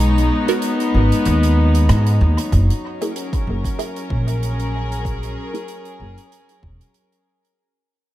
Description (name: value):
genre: ambient dub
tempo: 95 BPM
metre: 4/4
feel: swing 55% on 16ths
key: F# mixolydian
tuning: A4 = 440 Hz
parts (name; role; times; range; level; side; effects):
- dark studio string section; sustained chords; 0.0-7.6 s; F#3 to A#4; -22 LUFS; left 2 dB; none
- upright bass; bass; 0.0-6.8 s; E1 to G#2; -16 LUFS; equal; none
- soft-mallet drum kit; drums; 0.0-7.6 s; hi-hat, rim click; -33 LUFS; right 3 dB; dub echo
- backwards swelling texture; texture; 0.0-2.5 s; C#4 to C#5; -37 LUFS; right 2 dB; none
- filtered dub chord stab; stabs; 0.5-7.6 s; A#3 to A#4; -25 LUFS; right 5 dB; phaser, dub echo
- electronic kick drum; drums; 2.5-6.8 s; none; -22 LUFS; equal; overdrive
room: light reverb, small room reverb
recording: none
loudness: -16 LUFS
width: side -14 dB against mid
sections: 0.0-2.5 A section; 2.5-7.6 B section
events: break 0.0-2.5; fade-out 2.5-7.6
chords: 0.0 G#m7; 2.5 F#7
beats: | 0.00 0.63 1.26 1.89 | 2.52 3.16 3.79 4.42 | 5.05 5.68 6.31 6.95